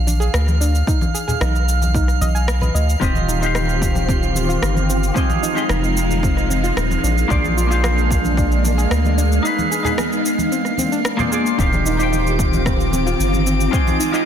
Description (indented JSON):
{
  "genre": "sunset chillout",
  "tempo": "112 BPM",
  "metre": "4/4",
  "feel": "straight",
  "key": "Eb major",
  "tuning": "A4 = 442 Hz",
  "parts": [
    { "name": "round analog bass", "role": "bass", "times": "0.0-13.7 s", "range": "Eb1 to D2", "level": "-18 LUFS", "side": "equal", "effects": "none" },
    { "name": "drifting glass-harmonics texture", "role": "texture", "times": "0.0-14.3 s", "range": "F5 to D6", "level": "-26 LUFS", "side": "right 4 dB", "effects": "chorus, built-in reverb" },
    { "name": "soft round pluck", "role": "arpeggios", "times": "0.1-14.3 s", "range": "C4 to Ab5", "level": "-26 LUFS", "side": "right 2 dB", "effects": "chorus, digital delay" },
    { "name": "electronic shaker and rim click", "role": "drums", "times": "0.1-14.2 s", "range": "none", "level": "-27 LUFS", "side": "equal", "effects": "overdrive" },
    { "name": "congas", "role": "percussion", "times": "0.1-14.0 s", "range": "none", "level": "-28 LUFS", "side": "left 2 dB", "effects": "none" },
    { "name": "electronic kick drum", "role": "drums", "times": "0.9-13.8 s", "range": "none", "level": "-20 LUFS", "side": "equal", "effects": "overdrive" },
    { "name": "semi-hollow electric guitar", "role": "accompaniment", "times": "3.0-14.2 s", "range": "Eb3 to G5", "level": "-23 LUFS", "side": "equal", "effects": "auto-pan, vintage 12-bit sampler grit, digital delay" },
    { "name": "soft string machine", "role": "sustained chords", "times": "3.0-14.3 s", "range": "Eb3 to G4", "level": "-22 LUFS", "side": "equal", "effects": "phaser, ensemble chorus, vintage 12-bit sampler grit" }
  ],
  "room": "light reverb",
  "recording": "dense, heavily limited modern master",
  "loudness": "-15 LUFS",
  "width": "side -9 dB against mid",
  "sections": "0.0-11.6 A section; 11.6-14.3 B section",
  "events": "break 9.4-11.6",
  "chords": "0.0 Bb7; 0.9 Abm/Cb; 3.0 Eb69; 5.2 Fm7; 7.0 Bb7; 9.4 Abm; 10.5 Bb9; 11.6 Eb69; 13.7 Fm7"
}